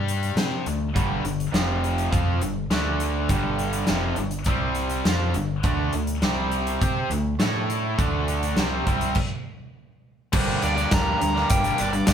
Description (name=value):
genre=classic rock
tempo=102 BPM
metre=4/4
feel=straight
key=G minor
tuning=A4 = 440 Hz
part: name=tight distorted guitar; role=riff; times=0.0-12.1 s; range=F2 to C5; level=-28 LUFS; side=left 6 dB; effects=distortion
part: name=growling fingered electric bass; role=bass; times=0.0-12.1 s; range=F1 to C3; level=-28 LUFS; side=equal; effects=overdrive
part: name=big rock drum kit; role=drums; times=0.1-12.1 s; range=crash cymbal, hi-hat, kick drum, snare drum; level=-25 LUFS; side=equal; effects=none
part: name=crunchy overdriven guitar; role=riff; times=0.9-12.1 s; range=F2 to C5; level=-28 LUFS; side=right 8 dB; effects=none
part: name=dark smooth lead guitar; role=melody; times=10.3-12.1 s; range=C5 to Bb5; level=-26 LUFS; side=left 1 dB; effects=overdrive
room=moderate studio reverb, RT60 0.7 s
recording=band playing live in one room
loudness=-21 LUFS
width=side -8 dB against mid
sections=0.0-10.3 A section; 10.3-12.1 B section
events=stop 9.2-10.3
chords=0.4 D5; 1.0 G5; 1.5 F5; 2.1 G5; 2.7 D5; 3.3 G5; 4.5 C5; 5.0 G5; 5.6 D5; 6.2 C5; 6.8 D5; 7.4 A5; 8.0 D5; 8.9 C5; 9.5 N.C.; 10.3 Gm